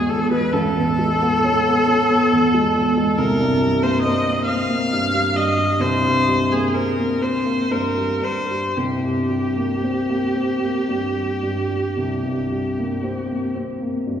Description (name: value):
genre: classical, impressionist duo for viola and grand piano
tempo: 37-47 BPM (dotted quarters)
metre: 12/8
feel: rubato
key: unclear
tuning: A4 = 436 Hz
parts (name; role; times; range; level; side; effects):
- clear viola; melody; 0.0-13.6 s; G4 to F5; -21 LUFS; equal; none
- dark baby grand piano; accompaniment; 0.0-14.2 s; A1 to C#4; -20 LUFS; equal; none
room: wet concert hall reverb, RT60 2.6 s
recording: heard from further back in the room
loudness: -17 LUFS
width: side -9 dB against mid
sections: 0.0-14.2 A section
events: none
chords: 0.0 Amaj9; 3.2 C5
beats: 0.55 1.87 | 3.18 4.47 5.82 7.22 | 8.77 10.35 11.97 13.55